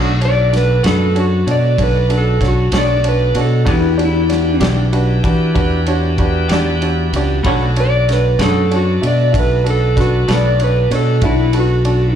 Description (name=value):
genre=slow blues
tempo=64 BPM (dotted quarters)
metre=12/8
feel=straight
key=B minor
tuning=A4 = 436 Hz
part: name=clear baby grand piano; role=accompaniment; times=0.0-12.1 s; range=D4 to E5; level=-21 LUFS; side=right 3 dB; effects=slapback echo
part: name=semi-hollow electric guitar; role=accompaniment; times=0.0-10.5 s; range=B2 to G4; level=-22 LUFS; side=left 2 dB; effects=tremolo, slapback echo
part: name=bright tonewheel organ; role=sustained chords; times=0.0-12.2 s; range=E3 to A4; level=-27 LUFS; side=equal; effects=overdrive, slow rotary speaker
part: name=modern bright fingered electric bass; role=bass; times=0.0-12.1 s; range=B1 to E3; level=-15 LUFS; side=equal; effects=none
part: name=warm soul drum kit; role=drums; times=0.2-12.0 s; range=kick drum, ride cymbal, snare drum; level=-22 LUFS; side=equal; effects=none
part: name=electric slide guitar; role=melody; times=0.3-12.2 s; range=E4 to D5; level=-17 LUFS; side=equal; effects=slapback echo
room=studio reverb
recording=live gig heard through the venue's PA, club reverb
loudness=-12 LUFS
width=side -9 dB against mid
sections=0.0-12.2 A section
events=electric slide guitar solo 0.0-12.2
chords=0.0 Bm7; 3.7 Em7; 7.4 Bm7